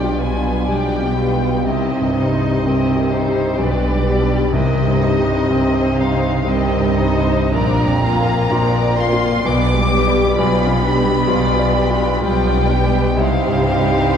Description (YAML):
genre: classical, romantic movement for piano and orchestra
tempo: 63 BPM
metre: 3/4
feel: uneven beats, rubato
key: C minor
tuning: A4 = 444 Hz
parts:
  - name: clear concert grand piano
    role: melody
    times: 0.0-14.2 s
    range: Bb1 to D5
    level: -18 LUFS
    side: equal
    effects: none
  - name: rich chamber violin section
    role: melody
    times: 0.0-14.2 s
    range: C5 to D6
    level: -23 LUFS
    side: left 2 dB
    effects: none
  - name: rich chamber violin section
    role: second line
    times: 0.0-14.2 s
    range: C4 to F5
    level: -25 LUFS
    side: left 1 dB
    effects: none
  - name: warm chamber viola section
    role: accompaniment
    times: 0.0-14.2 s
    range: Eb3 to F4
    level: -23 LUFS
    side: equal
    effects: none
  - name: clear chamber double bass section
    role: bass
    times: 0.0-14.2 s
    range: Bb1 to C2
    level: -23 LUFS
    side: right 1 dB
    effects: none
  - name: warm chamber cello section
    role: bass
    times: 0.0-14.2 s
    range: Bb2 to C3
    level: -23 LUFS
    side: right 2 dB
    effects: none
  - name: timpani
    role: percussion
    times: 4.5-5.9 s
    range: C3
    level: -26 LUFS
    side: left 4 dB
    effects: none
room: wet scoring stage reverb, RT60 2.0 s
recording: heard from further back in the room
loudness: -14 LUFS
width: side -8 dB against mid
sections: 0.0-14.2 A section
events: none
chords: 0.0 G7/B; 1.7 Cm; 3.6 G/B; 4.5 Cm; 7.5 Bb; 9.4 G/B; 10.4 G7/B; 13.2 Cm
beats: 0.69 | 1.68 2.66 3.60 | 4.54 5.50 6.46 | 7.53 8.50 9.45 | 10.36 11.29 12.23 | 13.19